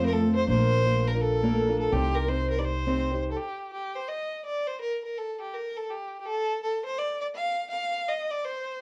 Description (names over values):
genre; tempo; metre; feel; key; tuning
celtic folk; 166 BPM; 4/4; swing 63% on 8ths; C dorian; A4 = 440 Hz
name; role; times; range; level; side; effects
rich fiddle; melody; 0.0-8.8 s; G4 to F5; -32 LUFS; equal; none
mellow hollow baroque flute; second line; 0.0-3.2 s; G4 to D5; -34 LUFS; equal; none
fingerpicked steel-string acoustic guitar; accompaniment; 0.0-3.4 s; F3 to C5; -30 LUFS; equal; none
upright bass; bass; 0.0-3.3 s; Bb1 to F2; -30 LUFS; equal; none
room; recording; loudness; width
moderate studio reverb, RT60 0.6 s; worn, warbling old tape, cassette tape, warbly pitch drift; -28 LUFS; mono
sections
0.0-3.4 A section; 3.4-8.8 B section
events
none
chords
0.5 Bb; 1.9 Cm; 3.4 N.C.